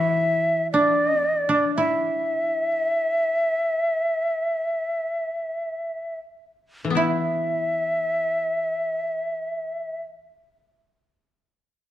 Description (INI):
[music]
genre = japanese traditional, Japanese chamber music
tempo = free time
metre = none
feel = none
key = unclear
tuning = A4 = 440 Hz
[part]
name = shakuhachi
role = melody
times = 0.0-10.0 s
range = D5 to E5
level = -23 LUFS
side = equal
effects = none
[part]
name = koto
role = second line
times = 0.0-10.0 s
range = D4 to F#4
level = -25 LUFS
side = right 2 dB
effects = none
[part]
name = koto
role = accompaniment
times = 0.0-10.2 s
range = E3 to E4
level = -29 LUFS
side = left 4 dB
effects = none
[sound]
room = moderate recital hall reverb, RT60 1.4 s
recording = dark, warm production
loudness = -21 LUFS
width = side -12 dB against mid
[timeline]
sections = 0.0-7.0 A section; 7.0-11.9 B section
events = slowing down 0.0-7.0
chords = none